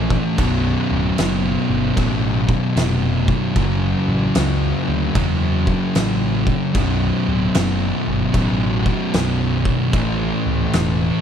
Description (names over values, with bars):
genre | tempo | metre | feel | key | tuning
stoner and doom metal | 75 BPM | 4/4 | swing 65% on 8ths | unclear | A4 = 440 Hz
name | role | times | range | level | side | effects
thick fuzz guitar | riff | 0.0-11.2 s | B1 to A3 | -22 LUFS | left 10 dB | distortion
thick fuzz guitar | riff | 0.0-11.2 s | B1 to A3 | -22 LUFS | right 8 dB | distortion
overdriven picked electric bass | bass | 0.0-11.1 s | B0 to E2 | -22 LUFS | equal | none
oversized low-tuned drum kit | drums | 0.1-11.0 s | crash cymbal, kick drum, snare drum | -23 LUFS | equal | none
room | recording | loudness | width
little or no reverb | none | -16 LUFS | side -8 dB against mid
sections
0.0-11.2 A section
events
none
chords
0.4 B5; 3.6 F#m; 6.8 B5; 9.9 A